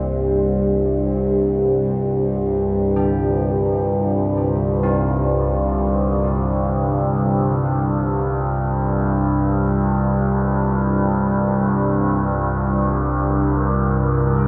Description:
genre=dark ambient drone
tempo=free time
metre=none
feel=none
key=unclear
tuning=A4 = 444 Hz
part: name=sweeping resonant pad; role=sustained chords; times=0.0-14.5 s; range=D4 to D5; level=-30 LUFS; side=equal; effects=chorus
part: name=carillon bells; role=arpeggios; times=0.0-10.5 s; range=G3 to D4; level=-32 LUFS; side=equal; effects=delay
part: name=overtone-sweeping drone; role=drone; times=0.0-14.5 s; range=C2 to G2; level=-20 LUFS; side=equal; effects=chorus, built-in reverb
part: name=quartz singing bowl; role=texture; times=0.0-14.5 s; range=none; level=barely audible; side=none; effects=none
room=wet huge ambient reverb, RT60 8.2 s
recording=dark, warm production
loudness=-19 LUFS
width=mono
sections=0.0-14.5 A section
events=fade-in on analog synth pad 0.0-14.5; fade-in on church bells 0.0-14.5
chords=0.0 Csus2

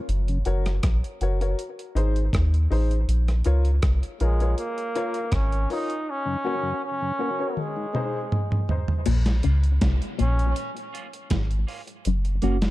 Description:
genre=dub reggae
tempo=80 BPM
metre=4/4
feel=straight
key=Bb minor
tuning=A4 = 440 Hz
part: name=soft dub sub bass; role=bass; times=0.1-12.7 s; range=Gb1 to Eb2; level=-21 LUFS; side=equal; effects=none
part: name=dusty soul sampler-style drum kit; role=drums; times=0.1-12.7 s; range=crash cymbal, hi-hat, kick drum, rim click, snare drum, toms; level=-27 LUFS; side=equal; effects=overdrive
part: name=mellow tonewheel organ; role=accompaniment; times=0.3-0.4, 6.3-9.4 s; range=Gb2 to Gb4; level=-34 LUFS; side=left 1 dB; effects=overdrive, chorus vibrato, slow rotary speaker, high-pass filter, tape echo
part: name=dark grand piano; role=stabs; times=0.5-8.9 s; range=Eb4 to Db5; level=-32 LUFS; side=left 4 dB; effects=high-pass filter, tape echo
part: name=brilliant trombone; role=melody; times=4.2-10.5 s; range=Ab3 to Eb4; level=-29 LUFS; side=right 1 dB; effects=tape echo
part: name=electric guitar with an envelope filter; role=riff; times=9.1-12.7 s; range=Gb2 to Db3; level=-30 LUFS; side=left 7 dB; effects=tape echo
part: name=mellow electric guitar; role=accompaniment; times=9.4-12.6 s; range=Bb3 to Gb4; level=-31 LUFS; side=right 4 dB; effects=phaser, high-pass filter
room=little or no reverb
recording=dark, warm production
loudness=-22 LUFS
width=side -17 dB against mid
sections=0.0-9.1 A section; 9.1-12.7 B section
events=break 0.0-9.1; filter sweep 6.1-12.1; drum fill 7.6-9.1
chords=0.1 Gb; 1.6 Ab; 3.1 Bbm; 6.1 Gb; 7.6 Ab; 9.1 Bbm; 12.1 Gb

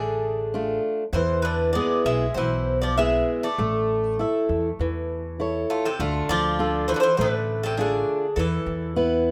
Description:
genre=greek folk, Greek bouzouki band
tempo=100 BPM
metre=4/4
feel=straight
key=D dorian sharp4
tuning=A4 = 440 Hz
part: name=Greek bouzouki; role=melody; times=0.0-9.2 s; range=F4 to E5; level=-28 LUFS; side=equal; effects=plate reverb
part: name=Greek bouzouki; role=second line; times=0.0-9.2 s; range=C3 to A3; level=-34 LUFS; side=equal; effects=plate reverb
part: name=fingerpicked steel-string acoustic guitar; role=accompaniment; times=0.0-9.3 s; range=B2 to E5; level=-27 LUFS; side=equal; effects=plate reverb
part: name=upright bass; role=bass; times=0.0-9.3 s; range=A1 to E2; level=-31 LUFS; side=equal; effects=none
room=moderate studio reverb, RT60 0.6 s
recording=rough home demo mix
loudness=-24 LUFS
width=mono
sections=0.0-6.0 A section; 6.0-9.3 B section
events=speeding up 0.0-9.3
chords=0.0 Dm; 1.1 E; 3.6 A; 6.0 Dm; 8.4 E5

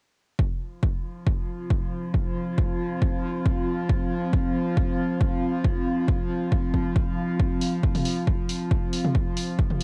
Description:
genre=driving peak-time techno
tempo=137 BPM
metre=4/4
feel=straight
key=unclear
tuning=A4 = 440 Hz
part: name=metallic inharmonic drone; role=drone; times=1.1-9.8 s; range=F3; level=-33 LUFS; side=equal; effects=chorus, built-in reverb, sidechain pumping
part: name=electronic kick drum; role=drums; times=0.4-9.7 s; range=none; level=-26 LUFS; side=equal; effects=cassette tape
part: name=deep dark ambient pad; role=texture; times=1.5-9.8 s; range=C4 to F5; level=-32 LUFS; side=equal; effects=chorus, built-in reverb, sidechain pumping
part: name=punchy analog drum machine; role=drums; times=7.6-9.8 s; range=hi-hat, toms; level=-31 LUFS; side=equal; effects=sidechain pumping on hats, cassette tape, sidechain pumping on toms
room=light reverb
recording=home recording on cassette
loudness=-25 LUFS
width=mono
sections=0.4-9.8 A section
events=none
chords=0.4 F5

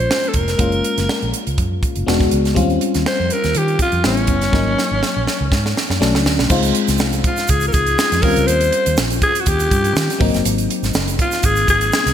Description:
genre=polished 1980s jazz-funk pop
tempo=122 BPM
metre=4/4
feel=swing 54% on 16ths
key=unclear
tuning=A4 = 440 Hz
part: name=raspy alto saxophone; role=melody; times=0.0-12.1 s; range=C#4 to C5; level=-19 LUFS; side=equal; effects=digital delay
part: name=FM electric piano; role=accompaniment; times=0.0-12.1 s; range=Gb3 to F#4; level=-21 LUFS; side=left 4 dB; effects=analog chorus
part: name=vintage muted fingered electric bass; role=bass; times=0.0-12.1 s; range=E1 to Eb3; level=-20 LUFS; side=right 1 dB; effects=none
part: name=crisp fusion drum kit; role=drums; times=0.1-12.1 s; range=crash cymbal, hi-hat, kick drum, snare drum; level=-19 LUFS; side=right 1 dB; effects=gated reverb
part: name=egg shaker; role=percussion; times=6.5-12.1 s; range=none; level=-31 LUFS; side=right 8 dB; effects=none
room=moderate lush hall reverb, RT60 2.2 s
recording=bright 1980s-style digital production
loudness=-14 LUFS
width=side -9 dB against mid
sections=0.0-6.5 A section; 6.5-12.1 B section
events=drum fill 4.5-6.5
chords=0.0 Bbm9; 0.6 Gbmaj7; 2.1 E9; 2.6 Eb13; 4.0 A9; 4.5 Ab9sus4; 6.0 Bm9; 6.5 Dbmaj7; 8.2 Eb13; 10.2 Ab9

